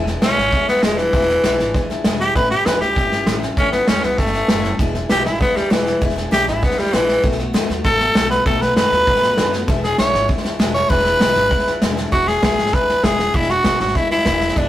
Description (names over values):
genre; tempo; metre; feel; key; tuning
rockabilly; 197 BPM; 4/4; straight; E mixolydian; A4 = 442 Hz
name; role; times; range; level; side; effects
picked steel-string acoustic guitar; accompaniment; 0.0-14.7 s; E2 to F#4; -25 LUFS; left 3 dB; none
upright bass; bass; 0.0-14.7 s; E1 to F#2; -27 LUFS; equal; none
vintage brush drum kit; drums; 0.1-14.6 s; hi-hat, kick drum, snare drum; -19 LUFS; equal; none
growling tenor saxophone; melody; 0.2-14.7 s; E3 to C#5; -17 LUFS; equal; none
room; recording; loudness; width
light reverb; rough rehearsal-room recording, warm saturation; -14 LUFS; side -13 dB against mid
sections
0.0-12.1 A section; 12.1-14.7 B section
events
tenor saxophone solo 0.0-12.1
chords
0.0 E7; 2.4 A7; 4.8 E7; 7.2 B7; 9.7 E7